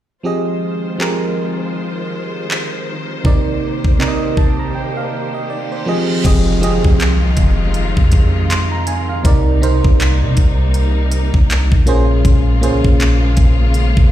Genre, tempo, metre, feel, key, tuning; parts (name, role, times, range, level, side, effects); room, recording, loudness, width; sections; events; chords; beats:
contemporary R&B; 80 BPM; 4/4; swing 58% on 16ths; F minor; A4 = 441 Hz
FM electric piano; accompaniment; 0.2-14.1 s; Bb2 to C6; -18 LUFS; right 2 dB; chorus
warm studio string section; sustained chords; 0.2-14.1 s; C3 to C5; -24 LUFS; left 3 dB
pop drum kit; drums; 1.0-14.1 s; crash cymbal, handclaps, hi-hat, kick drum; -14 LUFS; equal
reverse cymbal and downlifter; sound effects; 5.4-12.2 s; -29 LUFS; left 1 dB
soft 808-style bass; bass; 6.3-14.1 s; F1 to C3; -15 LUFS; equal
little or no reverb; played on a big sound system in a bare room, large studio reverb; -13 LUFS; side -12 dB against mid
0.2-6.2 A section; 6.2-14.1 B section
FM electric piano fill 4.0-6.2; break 4.8-6.2; reverse cymbal 5.4-6.2
0.2 Fm7; 3.2 Cm7; 5.9 Fm7; 9.2 Cm7; 11.9 Bbm7
| 0.25 1.00 1.75 2.50 | 3.25 4.00 4.75 5.50 | 6.25 7.00 7.75 8.50 | 9.25 10.00 10.75 11.50 | 12.25 13.00 13.75